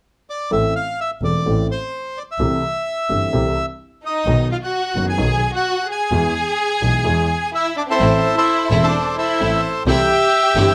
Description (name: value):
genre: tango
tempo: 129 BPM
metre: 4/4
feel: rubato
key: A minor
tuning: A4 = 441 Hz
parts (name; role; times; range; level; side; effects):
- bandoneon; melody; 0.3-10.7 s; E4 to G#5; -22 LUFS; equal; plate reverb
- warm upright piano; accompaniment; 0.5-10.7 s; E1 to A4; -23 LUFS; equal; none
- rich double bass; bass; 0.5-10.7 s; E1 to E2; -25 LUFS; equal; none
- warm studio violin section; second line; 4.1-10.7 s; C4 to G#4; -24 LUFS; equal; none
- bright studio string section; stabs; 8.0-10.7 s; A3 to E4; -28 LUFS; equal; none
room: moderate studio ambience, RT60 0.5 s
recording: none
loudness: -19 LUFS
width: mono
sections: 0.5-8.0 A section; 8.0-10.7 B section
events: none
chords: 0.0 N.C.; 0.5 Am; 2.4 C6; 4.3 B; 6.1 E; 8.0 Am; 9.9 C6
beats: 0.04 | 0.52 0.99 1.46 1.93 | 2.40 2.87 3.34 3.80 | 4.26 4.73 5.19 5.65 | 6.12 6.58 7.05 7.53 | 8.00 8.47 8.94 9.40 | 9.87 10.33